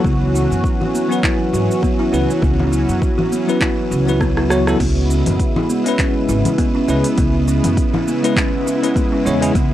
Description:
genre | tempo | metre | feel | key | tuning
organic downtempo | 101 BPM | 4/4 | swing 56% on 16ths | C# minor | A4 = 439 Hz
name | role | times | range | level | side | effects
warm analog pad | sustained chords | 0.0-9.7 s | C#3 to F#4 | -23 LUFS | right 1 dB | chorus, sidechain pumping
buzzing kalimba | arpeggios | 0.0-9.7 s | B3 to F#4 | -20 LUFS | right 1 dB | analog delay
upright bass | bass | 0.0-9.7 s | G#1 to F#2 | -19 LUFS | equal | transformer saturation
electronic kick drum | drums | 0.0-9.7 s | none | -19 LUFS | equal | none
organic electronic drum kit | drums | 0.1-9.7 s | cabasa, congas, crash cymbal, handclaps, hi-hat, rim click | -23 LUFS | left 1 dB | none
bell-like tine electric piano | accompaniment | 1.1-9.5 s | F#3 to C#5 | -21 LUFS | left 3 dB | fast stereo tremolo, sidechain pumping, analog delay
room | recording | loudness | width
little or no reverb | dry, gritty hardware recording | -14 LUFS | side -12 dB against mid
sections
0.0-4.8 A section; 4.8-9.7 B section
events
drum fill 4.2-4.8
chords
0.0 Esus2; 4.8 C#m7

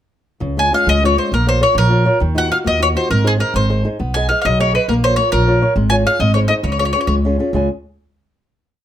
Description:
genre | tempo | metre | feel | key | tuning
italian folk, Italian serenade | 135 BPM (dotted quarters) | 6/8 | straight | Db major | A4 = 445 Hz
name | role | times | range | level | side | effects
flamenco guitar | accompaniment | 0.4-7.7 s | Db3 to Ab5 | -19 LUFS | left 1 dB | none
upright bass | bass | 0.4-7.7 s | Ab1 to Eb2 | -17 LUFS | right 1 dB | none
bowl-back mandolin | melody | 0.6-7.1 s | Ab4 to Ab5 | -17 LUFS | left 1 dB | plate reverb
room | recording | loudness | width
light reverb | none | -13 LUFS | side -11 dB against mid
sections
0.4-7.5 A section; 7.5-8.4 final chord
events
none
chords
0.4 Db; 1.3 Bbm; 2.2 Ebmadd9; 3.1 Ab; 4.0 Cb6; 4.9 Bbm; 5.8 Db/Ab; 6.2 Ab; 6.6 Db

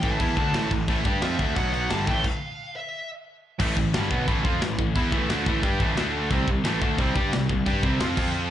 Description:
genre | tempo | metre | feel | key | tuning
heavy metal | 177 BPM | 4/4 | straight | A minor | A4 = 439 Hz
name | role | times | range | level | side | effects
high-gain lead guitar | melody | 0.0-3.1 s | E5 to A5 | -31 LUFS | left 1 dB | distortion, slapback echo, ping-pong delay
distorted electric guitar | riff | 0.0-8.5 s | G2 to G4 | -28 LUFS | right 8 dB | overdrive
overdriven electric guitar | riff | 0.0-8.5 s | G2 to G4 | -33 LUFS | left 1 dB | none
scooped high-gain guitar | riff | 0.0-8.5 s | G2 to G4 | -30 LUFS | left 10 dB | distortion, slapback echo
fuzz picked electric bass | bass | 0.0-8.5 s | G1 to G2 | -28 LUFS | equal | overdrive
tight metal drum kit | drums | 0.0-8.4 s | crash cymbal, kick drum, snare drum | -27 LUFS | equal | none
room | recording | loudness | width
little or no reverb | live gig heard through the venue's PA, club ambience, nothing above 10.7 kHz | -22 LUFS | side -11 dB against mid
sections
0.0-3.6 A section; 3.6-8.5 B section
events
stop 2.2-3.6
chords
0.0 Am; 1.6 B5; 1.9 A5; 2.9 N.C.; 3.6 Am; 6.0 D5; 6.3 C5; 8.2 F5

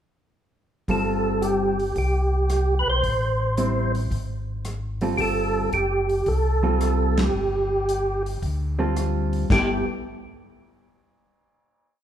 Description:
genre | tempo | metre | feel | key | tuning
soul jazz organ trio | 111 BPM | 4/4 | swing 69% on 8ths | G mixolydian | A4 = 439 Hz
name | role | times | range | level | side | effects
percussive tonewheel organ | melody | 0.9-9.9 s | G4 to C5 | -24 LUFS | right 2 dB | chorus vibrato, slow rotary speaker
vintage hollow-body jazz guitar | accompaniment | 0.9-9.8 s | G3 to A4 | -26 LUFS | equal | none
mellow tonewheel organ | bass | 0.9-9.8 s | F#1 to D2 | -25 LUFS | equal | overdrive, chorus vibrato, slow rotary speaker
warm soul drum kit | drums | 0.9-9.7 s | crash cymbal, hi-hat, kick drum, ride cymbal, rim click, snare drum | -28 LUFS | equal | none
room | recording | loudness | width
moderate recital hall reverb, RT60 1.6 s | recorded in a church or concert hall | -21 LUFS | side -10 dB against mid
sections
0.9-9.5 A section; 9.5-11.7 final chord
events
band accent 7.1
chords
0.9 G9sus4; 3.0 Am7; 4.1 Ab6; 5.2 G9sus4; 9.5 G69

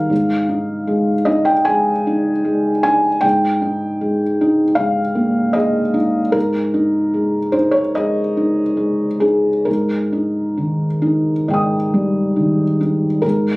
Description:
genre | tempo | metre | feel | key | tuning
neoclassical minimalist piano | 65-79 BPM | 4/4 | rubato | unclear | A4 = 440 Hz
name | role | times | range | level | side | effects
felt-muted upright piano | solo | 0.0-13.6 s | Ab2 to Eb6 | -15 LUFS | equal | none
room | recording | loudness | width
light reverb | recorded on a phone in the room, studio ambience | -15 LUFS | side -22 dB against mid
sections
0.0-13.2 A section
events
none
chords
0.1 Ab5; 3.2 Eb/Ab; 6.3 Ab5; 9.7 Eb/Ab

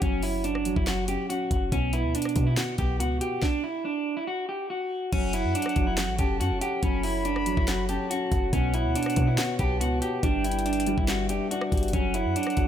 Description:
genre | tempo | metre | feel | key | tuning
hip hop, trap | 141 BPM | 4/4 | half-time | F# phrygian | A4 = 440 Hz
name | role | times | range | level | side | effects
electric guitar at the edge of break-up | melody | 0.0-12.7 s | C#4 to G4 | -29 LUFS | right 2 dB | ping-pong delay
dark concert grand piano | accompaniment | 0.0-12.7 s | B2 to F#5 | -31 LUFS | equal | none
warm 808-style bass | bass | 0.0-12.7 s | F#1 to B2 | -29 LUFS | equal | none
trap drum kit | drums | 0.0-12.7 s | crash cymbal, handclaps, hi-hat, kick drum, rim click, snare drum | -29 LUFS | equal | none
wooden flute | second line | 5.1-12.7 s | F#5 to B5 | -34 LUFS | left 5 dB | ping-pong delay
mellow French horn section | sustained chords | 5.1-12.7 s | F#3 to E5 | -39 LUFS | left 2 dB | none
room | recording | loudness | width
small room ambience | none | -24 LUFS | side -10 dB against mid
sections
0.0-5.1 A section; 5.1-12.7 B section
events
stop 3.4-5.1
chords
0.0 F#5; 1.7 B5; 3.4 N.C.; 5.1 F#m; 8.5 Bsus2; 10.2 G6; 11.9 F#m

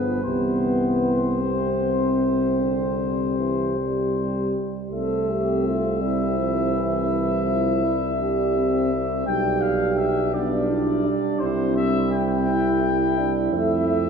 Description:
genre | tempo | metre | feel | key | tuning
classical, hymn-like piece for brass band | 50-58 BPM (dotted quarters) | 12/8 | rubato | C major | A4 = 441 Hz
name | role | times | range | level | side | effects
dark trumpet section | melody | 0.0-14.1 s | B4 to G5 | -28 LUFS | left 5 dB | none
warm French horn section | second line | 0.0-14.1 s | D4 to A4 | -26 LUFS | right 4 dB | none
dark trombone section | accompaniment | 0.0-14.1 s | B3 to E4 | -26 LUFS | left 2 dB | none
warm euphonium | accompaniment | 0.0-14.1 s | C3 to A3 | -29 LUFS | right 3 dB | none
mellow tuba | bass | 0.0-14.1 s | G1 to F2 | -26 LUFS | equal | none
room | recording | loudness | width
wet cathedral reverb, RT60 4.9 s | recorded in a church or concert hall | -20 LUFS | side -6 dB against mid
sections
0.0-4.9 A section; 4.9-14.1 B section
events
none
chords
0.3 C; 9.3 G/B; 11.4 C; 13.5 Fmaj7

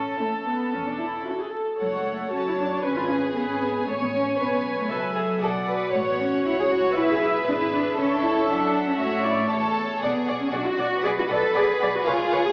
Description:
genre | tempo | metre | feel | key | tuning
quick classical-period movement for string orchestra | 117 BPM | 4/4 | straight | F# minor | A4 = 440 Hz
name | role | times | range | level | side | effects
warm studio violin section | melody | 0.0-12.4 s | A4 to A5 | -35 LUFS | equal | none
rich studio viola section | accompaniment | 0.0-12.4 s | A3 to E5 | -29 LUFS | equal | none
warm studio cello section | bass | 0.0-12.5 s | E2 to A4 | -28 LUFS | equal | none
warm studio double bass section | bass | 0.0-12.4 s | E1 to A2 | -41 LUFS | equal | none
clear studio violin section | second line | 0.2-12.5 s | C#4 to C#5 | -30 LUFS | equal | none
room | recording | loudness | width
wet recital hall reverb, RT60 1.8 s | heard from further back in the room, vinyl crackle, AM radio sound | -24 LUFS | mono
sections
0.0-1.8 A section; 1.8-12.5 B section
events
none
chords
0.0 A; 1.8 F#m; 2.8 C#7/G#; 3.9 F#m/A; 5.9 A; 7.0 E7/B; 8.0 A/C#; 10.0 Bm

